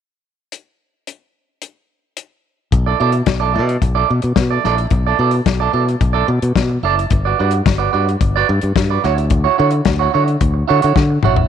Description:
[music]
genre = disco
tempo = 109 BPM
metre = 4/4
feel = straight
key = unclear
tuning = A4 = 440 Hz
[part]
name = warm soul drum kit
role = drums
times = 0.5-11.5 s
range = hi-hat, kick drum, snare drum, toms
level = -18 LUFS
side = left 4 dB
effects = none
[part]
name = clean electric guitar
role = accompaniment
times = 2.7-11.5 s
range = E4 to D5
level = -18 LUFS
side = right 11 dB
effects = none
[part]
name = modern bright fingered electric bass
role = bass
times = 2.7-11.5 s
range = F#1 to D3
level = -17 LUFS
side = left 1 dB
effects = none
[sound]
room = light reverb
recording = 1960s-style stereo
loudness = -13 LUFS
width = side -8 dB against mid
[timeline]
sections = 0.5-2.7 A section; 2.7-11.5 B section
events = drum fill 11.0-11.5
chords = 0.5 N.C.; 2.7 Bm7; 7.1 Gmaj7; 9.0 Dmaj9

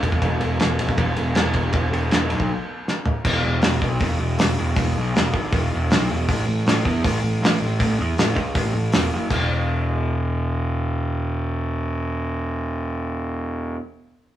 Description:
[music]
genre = garage rock duo or trio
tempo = 159 BPM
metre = 4/4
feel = straight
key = unclear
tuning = A4 = 439 Hz
[part]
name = fuzz picked electric bass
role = bass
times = 0.0-13.8 s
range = E1 to E2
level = -22 LUFS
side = equal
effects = overdrive
[part]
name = cloth-damped thuddy drum kit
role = drums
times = 0.0-9.4 s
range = crash cymbal, hi-hat, kick drum, ride cymbal, snare drum, toms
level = -21 LUFS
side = equal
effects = none
[sound]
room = moderate stone room reverb, RT60 1.2 s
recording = rough rehearsal-room recording, small room ambience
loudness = -19 LUFS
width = side -12 dB against mid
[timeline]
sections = 0.0-3.3 A section; 3.3-9.3 B section; 9.3-12.3 C section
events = break 2.5-3.3; drum fill 2.9-3.3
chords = none

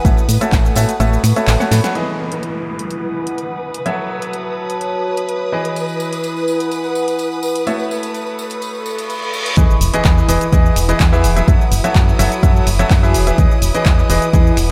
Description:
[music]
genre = piano house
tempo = 126 BPM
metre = 4/4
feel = straight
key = E major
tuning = A4 = 441 Hz
[part]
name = rich chamber violin section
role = sustained chords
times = 0.0-14.7 s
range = E4 to D#6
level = -28 LUFS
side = equal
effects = sidechain pumping, low-pass filter
[part]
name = bright grand piano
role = riff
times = 0.0-14.5 s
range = E3 to F#5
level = -23 LUFS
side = equal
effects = sidechain pumping, low-pass filter, tape echo
[part]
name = solid FM bass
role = bass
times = 0.0-1.8, 9.6-14.7 s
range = E1 to A2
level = -18 LUFS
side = equal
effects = sidechain pumping
[part]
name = electronic kick drum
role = drums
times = 0.0-0.6, 9.6-14.4 s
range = none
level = -16 LUFS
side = equal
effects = none
[part]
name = punchy analog drum machine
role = drums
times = 0.0-14.7 s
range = finger snaps, handclaps, hi-hat, shaker, snare drum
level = -26 LUFS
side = equal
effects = none
[part]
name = warbly tape-like pad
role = texture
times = 0.0-14.7 s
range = E4 to C#6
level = -26 LUFS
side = equal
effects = chorus, built-in reverb, sidechain pumping
[part]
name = tambourine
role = percussion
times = 0.1-1.9, 5.8-9.6 s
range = none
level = -35 LUFS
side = equal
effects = none
[part]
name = downlifter, reverse cymbal and impact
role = sound effects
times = 2.0-5.8, 8.9-11.5 s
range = none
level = -30 LUFS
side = equal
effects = none
[sound]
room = moderate church reverb, RT60 2.7 s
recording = dreamy mix soaked in reverb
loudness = -16 LUFS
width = mono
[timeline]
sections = 0.0-2.0 A section; 2.0-9.6 B section; 9.6-14.7 C section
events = kick drops out 1.0-2.0; drum fill 1.6-2.0; band accent 1.8; filter sweep on violin section 2.0-9.6; reverse cymbal 8.9-9.6; drop 9.6-14.7; impact 9.6-11.5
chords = 0.0 A6; 2.0 Emaj7; 3.9 F#m7; 5.5 Emaj7; 7.7 A6; 9.6 Emaj7; 11.5 F#m7; 13.1 Emaj7

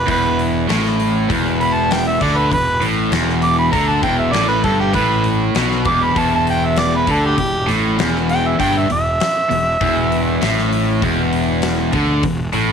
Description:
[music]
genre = blues rock power trio and southern rock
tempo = 99 BPM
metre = 4/4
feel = straight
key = E minor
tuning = A4 = 438 Hz
[part]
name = clear harmonica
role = melody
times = 0.0-10.7 s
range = G4 to D6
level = -18 LUFS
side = right 1 dB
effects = overdrive, slapback echo
[part]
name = cranked stack guitar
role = riff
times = 0.0-12.7 s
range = E2 to D3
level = -17 LUFS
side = equal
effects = overdrive
[part]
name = fuzz fingered electric bass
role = bass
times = 0.0-12.7 s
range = E1 to D2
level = -22 LUFS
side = equal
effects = overdrive
[part]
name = huge arena drum kit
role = drums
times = 0.1-12.7 s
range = hi-hat, kick drum, snare drum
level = -25 LUFS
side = left 4 dB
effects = none
[sound]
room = light reverb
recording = 1960s-style stereo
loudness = -14 LUFS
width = side -7 dB against mid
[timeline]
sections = 0.0-12.7 A section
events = harmonica solo 0.0-12.7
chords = none

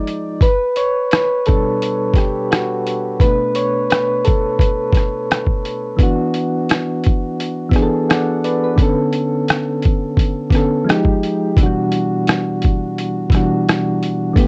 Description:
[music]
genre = lo-fi hip hop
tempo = 86 BPM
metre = 4/4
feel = swing 57% on 16ths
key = B minor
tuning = A4 = 441 Hz
[part]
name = soft electric-piano-like synth keys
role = accompaniment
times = 0.0-14.5 s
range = B2 to F#5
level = -19 LUFS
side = equal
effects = chorus, tremolo, low-pass filter
[part]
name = lo-fi sampler-style drum kit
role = drums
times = 0.1-14.5 s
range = hi-hat, kick drum, rim click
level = -18 LUFS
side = equal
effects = none
[sound]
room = moderate studio reverb, RT60 0.5 s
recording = worn, warbling old tape, cassette tape, warbly pitch drift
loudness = -17 LUFS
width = mono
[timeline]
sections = 0.0-6.0 A section; 6.0-14.5 A section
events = synth keys solo 0.0-6.0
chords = 0.4 Bm9; 3.2 Bm7; 6.0 D69; 8.8 Bm9; 10.9 Fm9; 11.6 Em9/B

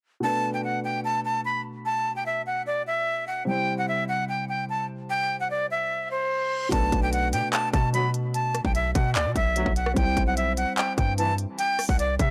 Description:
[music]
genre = hip hop, trap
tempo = 148 BPM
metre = 4/4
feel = half-time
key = B phrygian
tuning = A4 = 442 Hz
[part]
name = breathy bright jazz flute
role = melody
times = 0.2-12.3 s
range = C5 to B5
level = -28 LUFS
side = equal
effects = none
[part]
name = dark grand piano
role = accompaniment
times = 0.2-12.3 s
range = B2 to C5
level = -35 LUFS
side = equal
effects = none
[part]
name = reverse cymbal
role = sound effects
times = 6.1-6.7 s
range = none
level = -42 LUFS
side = equal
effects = none
[part]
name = hard-hitting 808-style bass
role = bass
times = 6.7-12.3 s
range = B1 to C3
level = -29 LUFS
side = equal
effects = none
[part]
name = trap drum kit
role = drums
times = 6.7-12.3 s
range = handclaps, hi-hat, kick drum, rim click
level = -28 LUFS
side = equal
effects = none
[part]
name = clear brass ensemble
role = stabs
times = 7.9-11.3 s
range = C2 to F#3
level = -35 LUFS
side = equal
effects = analog delay
[sound]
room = small room ambience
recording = dry, gritty hardware recording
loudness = -26 LUFS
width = mono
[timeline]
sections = 0.2-6.7 A section; 6.7-12.3 B section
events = reverse cymbal 6.1-6.7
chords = 0.2 Bm7; 3.5 C; 6.7 Bm7; 10.0 C

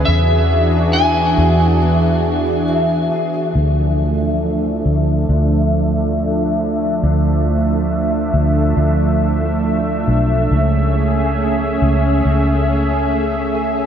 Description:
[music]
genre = dream pop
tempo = 69 BPM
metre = 4/4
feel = straight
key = unclear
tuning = A4 = 443 Hz
[part]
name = electric slide guitar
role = melody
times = 0.0-3.1 s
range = E5 to G#5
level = -20 LUFS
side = left 1 dB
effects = wide subtle chorus, ping-pong delay
[part]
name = warm analog pad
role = sustained chords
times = 0.0-13.9 s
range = E3 to E5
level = -18 LUFS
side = right 2 dB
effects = chorus, low-pass filter
[part]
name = fingerpicked twelve-string acoustic guitar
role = arpeggios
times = 0.0-13.9 s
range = E2 to G#4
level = -23 LUFS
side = left 3 dB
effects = ensemble chorus, low-pass filter, ping-pong delay
[part]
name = vintage muted fingered electric bass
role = bass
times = 0.0-13.9 s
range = B1 to E2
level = -17 LUFS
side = equal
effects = none
[sound]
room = wet huge ambient reverb, RT60 7.2 s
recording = dreamy mix soaked in reverb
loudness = -14 LUFS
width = side -8 dB against mid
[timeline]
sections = 0.0-3.6 A section; 3.6-13.9 B section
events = filter sweep 3.6-13.9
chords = 0.1 E7; 3.6 Dmadd9; 10.5 Amaj7/C#

